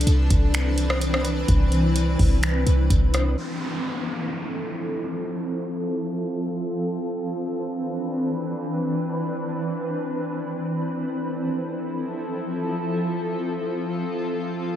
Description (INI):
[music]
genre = hip hop, atmospheric cloud-rap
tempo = free time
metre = none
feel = none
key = F lydian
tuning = A4 = 440 Hz
[part]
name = shimmering ambient pad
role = sustained chords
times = 0.0-14.8 s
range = E3 to B4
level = -25 LUFS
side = equal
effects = chorus, built-in reverb, sidechain pumping, low-pass filter
[part]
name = clean 808-style bass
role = bass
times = 0.0-3.4 s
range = C2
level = -20 LUFS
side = equal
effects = none
[part]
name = booming analog drum machine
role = drums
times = 0.0-3.3 s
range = finger snaps, hi-hat, kick drum, rim click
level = -23 LUFS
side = equal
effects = none
[part]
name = downlifter and swell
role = sound effects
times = 3.4-7.2, 14.7-14.8 s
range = none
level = -33 LUFS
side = equal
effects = none
[sound]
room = light reverb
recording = none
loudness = -22 LUFS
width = side -11 dB against mid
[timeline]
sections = 0.0-3.4 A section; 3.4-14.8 B section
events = filter sweep on ambient pad 3.4-14.8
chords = 0.0 Cmaj9; 3.4 Fmaj7; 7.2 Cmaj9; 10.9 Fmaj7